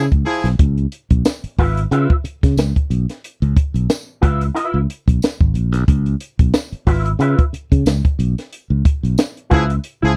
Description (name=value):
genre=funk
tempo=91 BPM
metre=4/4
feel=swing 56% on 16ths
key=Db mixolydian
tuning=A4 = 440 Hz
part: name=warm horn section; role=second line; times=0.0-0.5, 9.5-10.1 s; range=F3 to Ab4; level=-21 LUFS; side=equal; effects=none
part: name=fingered electric bass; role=bass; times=0.0-10.1 s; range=Ab1 to Db3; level=-19 LUFS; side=equal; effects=none
part: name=compact cocktail drum kit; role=drums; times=0.1-10.0 s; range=hi-hat, kick drum, snare drum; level=-18 LUFS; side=equal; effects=none
part: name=tambourine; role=percussion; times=1.2-9.4 s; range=none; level=-36 LUFS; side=equal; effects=none
part: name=electric guitar with an envelope filter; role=accompaniment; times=1.6-9.7 s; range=F4 to E5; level=-23 LUFS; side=equal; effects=ensemble chorus
room=little or no reverb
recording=dry, close 1970s-style studio recording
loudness=-18 LUFS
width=mono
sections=0.0-10.2 A section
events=band accent 0.0-0.6, 8.5-10.2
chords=0.0 Db7#9